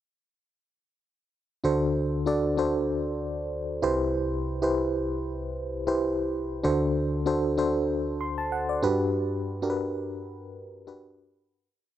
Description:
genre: pop.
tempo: 96 BPM.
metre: 4/4.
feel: swing 55% on 16ths.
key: D mixolydian.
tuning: A4 = 440 Hz.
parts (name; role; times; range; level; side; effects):
FM electric piano with auto-pan; solo; 1.6-11.7 s; C2 to C6; -25 LUFS; equal; none.
room: light reverb.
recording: none.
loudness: -25 LUFS.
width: side -12 dB against mid.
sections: 1.6-11.6 verse.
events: fade-out 9.1-11.6.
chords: 1.6 D7; 3.8 Cmaj7; 6.6 D7; 8.8 Gmaj7.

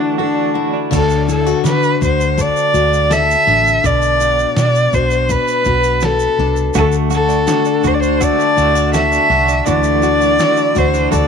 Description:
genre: acoustic pop.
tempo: 82 BPM.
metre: 4/4.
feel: straight.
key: D mixolydian.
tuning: A4 = 440 Hz.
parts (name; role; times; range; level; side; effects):
warm cello; melody; 0.0-11.3 s; D4 to E5; -15 LUFS; equal; none.
picked steel-string acoustic guitar; accompaniment; 0.0-11.3 s; B2 to B4; -19 LUFS; left 12 dB; none.
direct-recorded clean electric guitar; arpeggios; 0.0-1.5, 6.8-11.3 s; E3 to F#4; -20 LUFS; right 15 dB; tremolo.
vintage muted fingered electric bass; bass; 0.9-11.3 s; A1 to D3; -19 LUFS; right 1 dB; none.
dusty soul sampler-style drum kit; drums; 0.9-11.3 s; crash cymbal, kick drum, shaker, snare drum; -23 LUFS; right 1 dB; none.
tube shaker; percussion; 0.9-11.3 s; none; -31 LUFS; right 20 dB; none.
room: light reverb, studio reverb.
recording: 1960s-style stereo with parts hard left and right.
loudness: -12 LUFS.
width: side -6 dB against mid.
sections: 0.9-11.3 A section.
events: break 0.0-0.9.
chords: 0.0 Dadd9; 0.9 D; 3.8 Bm; 6.8 D; 9.7 Dadd9.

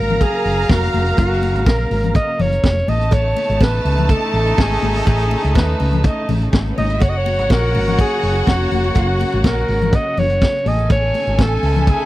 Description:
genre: disco.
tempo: 123 BPM.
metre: 4/4.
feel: straight.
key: unclear.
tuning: A4 = 440 Hz.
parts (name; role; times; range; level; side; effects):
breathy alto saxophone; melody; 0.0-12.1 s; Gb4 to D#5; -20 LUFS; equal; none.
warm studio violin section; second line; 0.0-12.1 s; G#3 to Bb5; -25 LUFS; right 2 dB; none.
clear studio string section; sustained chords; 0.0-12.1 s; Db3 to F5; -27 LUFS; equal; none.
clear horn section; stabs; 0.0-12.1 s; E3 to F5; -26 LUFS; left 2 dB; none.
hollow-body short-scale fingered electric bass; bass; 0.0-11.9 s; F1 to D#2; -19 LUFS; equal; none.
vintage drum kit; drums; 0.1-12.0 s; hi-hat, kick drum, snare drum; -15 LUFS; equal; none.
congas; percussion; 0.1-12.0 s; none; -26 LUFS; left 7 dB; none.
cowbell; percussion; 0.2-12.0 s; none; -33 LUFS; right 18 dB; none.
room: little or no reverb.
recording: dry, close 1970s-style studio recording.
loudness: -14 LUFS.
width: side -16 dB against mid.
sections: 0.0-12.1 A section.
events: none.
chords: 0.0 Gbmaj7; 2.9 Amaj9#11; 7.0 Gb; 10.7 Amaj9#11.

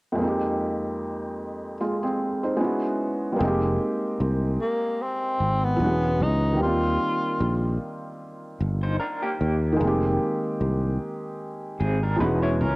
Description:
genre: hip hop.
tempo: 75 BPM.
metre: 4/4.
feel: swing 57% on 16ths.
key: unclear.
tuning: A4 = 440 Hz.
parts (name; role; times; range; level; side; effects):
felt-muted upright piano; accompaniment; 0.1-12.8 s; F2 to C5; -26 LUFS; equal; low-pass filter, cassette tape.
sustaining fretless electric bass; bass; 3.4-12.8 s; E1 to Eb2; -24 LUFS; equal; none.
breathy tenor saxophone; melody; 4.6-7.8 s; Bb3 to F4; -26 LUFS; equal; low-pass filter, cassette tape.
electric guitar through a small old amp; second line; 8.8-12.8 s; Bb3 to C#5; -28 LUFS; equal; tremolo, low-pass filter, cassette tape, analog delay.
room: light reverb, small room ambience.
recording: home recording on cassette.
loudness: -22 LUFS.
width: side -24 dB against mid.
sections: 0.2-3.4 A section; 3.4-12.8 B section.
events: none.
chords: 0.2 Fm11; 2.6 E69; 3.4 Fm11; 5.8 E69; 6.6 Eb69; 9.8 Fm11; 12.2 E69.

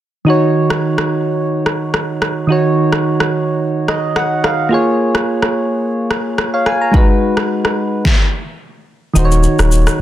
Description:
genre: afrobeats.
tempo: 108 BPM.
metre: 4/4.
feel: swing 55% on 16ths.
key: Eb minor.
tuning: A4 = 438 Hz.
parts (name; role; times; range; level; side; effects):
soft electric-piano-like synth keys; accompaniment; 0.2-10.0 s; Eb3 to Bb5; -14 LUFS; right 1 dB; chorus.
deep house drum kit; drums; 0.7-10.0 s; kick drum, rim click, shaker, snare drum; -17 LUFS; equal; soft clipping on snare.
punchy sub bass; bass; 9.2-10.0 s; Eb1; -12 LUFS; equal; none.
room: light reverb, digital ambience.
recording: dense, heavily limited modern master.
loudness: -13 LUFS.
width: side -12 dB against mid.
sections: 0.3-9.2 A section.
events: synth keys fill 3.6-4.7; stop 8.1-9.2; kick muted 9.2-10.0.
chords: 0.3 Ebm7; 4.7 Bbm7; 6.9 Abm7; 9.2 Ebm7.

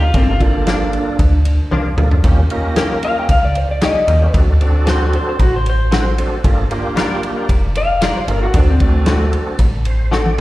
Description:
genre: straight-eighth soul blues.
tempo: 114 BPM.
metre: 4/4.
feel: straight.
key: G minor.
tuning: A4 = 440 Hz.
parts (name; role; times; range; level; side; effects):
electric guitar through a small old amp; melody; 0.0-9.3 s; A3 to G5; -20 LUFS; left 1 dB; slapback echo.
tonewheel organ; accompaniment; 0.0-10.4 s; Bb3 to D5; -22 LUFS; right 2 dB; slow rotary speaker, overdrive, chorus vibrato, slapback echo.
metallic FM bass; bass; 0.0-10.4 s; F1 to Eb2; -15 LUFS; equal; none.
warm horn section; sustained chords; 0.1-9.3 s; Bb3 to G4; -30 LUFS; left 1 dB; none.
warm soul drum kit; drums; 0.1-10.4 s; kick drum, ride cymbal, snare drum, toms; -18 LUFS; equal; none.
direct-recorded clean electric guitar; stabs; 0.7-10.3 s; G2 to Bb4; -24 LUFS; left 3 dB; ensemble chorus, slapback echo, analog delay.
room: light reverb, small room ambience.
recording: live gig heard through the venue's PA, recital hall reverb.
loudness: -13 LUFS.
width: side -17 dB against mid.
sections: 0.0-10.4 A section.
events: clean electric guitar solo 0.0-10.4; drum fill 1.7-2.2, 10.1; tonewheel organ fill 9.6-10.4.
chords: 0.1 Gm7; 2.2 Eb7; 4.3 D7; 6.4 Gm7; 8.5 D7.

